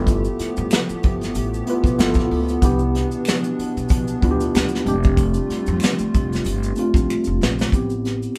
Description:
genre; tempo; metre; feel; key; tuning
R&B, neo-soul; 94 BPM; 4/4; swing 56% on 16ths; unclear; A4 = 440 Hz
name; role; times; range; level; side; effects
mellow tine electric piano; accompaniment; 0.0-8.4 s; G#3 to B4; -25 LUFS; equal; none
hollow soft pad; sustained chords; 0.0-7.7 s; B2 to G4; -32 LUFS; equal; chorus
upright bass; bass; 0.0-8.2 s; F1 to G2; -27 LUFS; equal; none
vintage brush drum kit; drums; 0.1-8.4 s; hi-hat, kick drum, snare drum; -22 LUFS; equal; none
maracas and finger snaps; percussion; 0.1-8.4 s; none; -40 LUFS; equal; none
room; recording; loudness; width
moderate small room reverb, RT60 0.5 s; band playing live in one room; -20 LUFS; mono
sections
0.0-7.7 A section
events
drum fill 7.1-7.7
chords
0.0 G13; 2.6 Cmaj9; 4.9 F69; 7.7 Am9

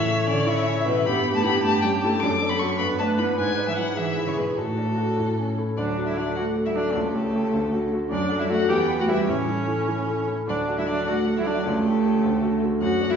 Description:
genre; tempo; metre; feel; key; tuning
quick classical-period movement for piano quartet; 102 BPM (dotted quarters); 6/8; straight; D major; A4 = 441 Hz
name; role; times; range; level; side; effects
rich violin; melody; 0.0-13.2 s; A4 to D6; -28 LUFS; left 4 dB; none
clear cello; second line; 0.0-13.2 s; A2 to D4; -29 LUFS; right 2 dB; none
bright grand piano; accompaniment; 0.0-13.2 s; C#2 to B4; -26 LUFS; left 1 dB; none
rich viola; accompaniment; 0.0-13.2 s; A3 to E5; -25 LUFS; right 1 dB; none
room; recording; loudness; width
wet recital hall reverb, RT60 1.4 s; heard from further back in the room, nothing above 7.5 kHz; -21 LUFS; side -7 dB against mid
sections
0.0-5.8 A section; 5.8-13.2 B section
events
none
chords
0.0 A; 1.1 Em/G; 1.6 A7/G; 2.2 D/F#; 2.8 Em7/G; 3.4 E7/G#; 4.6 D/A; 5.2 A; 5.8 D; 6.9 A7/C#; 7.5 D; 8.1 D/F#; 8.7 Em; 9.3 A; 10.5 D; 11.7 A7/C#; 12.2 D

